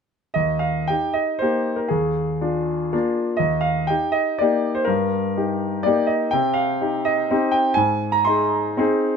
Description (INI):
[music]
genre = classical, romantic triple-time dance for piano with dotted rhythms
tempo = 109-132 BPM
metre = 3/4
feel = rubato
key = Eb major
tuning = A4 = 445 Hz
[part]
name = clear concert grand piano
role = solo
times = 0.3-9.2 s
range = Eb2 to C6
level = -19 LUFS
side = equal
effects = none
[sound]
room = moderate stone room reverb, RT60 1.0 s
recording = minimal, uncompressed stereo recording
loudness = -19 LUFS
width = side -6 dB against mid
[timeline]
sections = 0.4-9.2 A section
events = none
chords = 0.4 Eb; 1.9 Bb7/Eb; 3.4 Eb; 4.9 Eb/G; 6.3 Cm; 7.8 Ab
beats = | 0.36 0.90 1.41 | 1.91 2.42 2.93 | 3.41 3.90 4.42 | 4.88 5.37 5.85 | 6.32 6.81 7.31 | 7.78 8.29 8.79